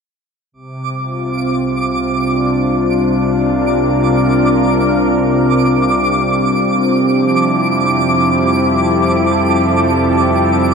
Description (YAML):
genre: ambient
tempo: 56 BPM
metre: 3/4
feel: straight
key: C mixolydian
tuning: A4 = 441 Hz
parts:
  - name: warm analog pad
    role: sustained chords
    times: 0.5-10.7 s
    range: C3 to Bb4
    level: -14 LUFS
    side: equal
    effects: wide subtle chorus
  - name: round analog bass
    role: bass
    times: 0.5-10.7 s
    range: C2 to F2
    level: -27 LUFS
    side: equal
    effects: none
  - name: analog drone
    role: drone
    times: 1.1-10.7 s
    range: C3 to G3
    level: -21 LUFS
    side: equal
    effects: chorus
  - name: twinkling granular texture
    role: texture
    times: 0.8-10.7 s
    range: D6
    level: -19 LUFS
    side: right 1 dB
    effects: built-in reverb
room: wet concert hall reverb, RT60 2.2 s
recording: cassette tape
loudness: -12 LUFS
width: side -5 dB against mid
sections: 0.5-10.7 A section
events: fade-in on analog synth bass 0.5-10.7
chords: 0.5 C7sus4; 7.0 Fmaj7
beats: | 0.54 1.63 2.72 | 3.80 4.88 5.96 | 7.04 8.12 9.20 | 10.29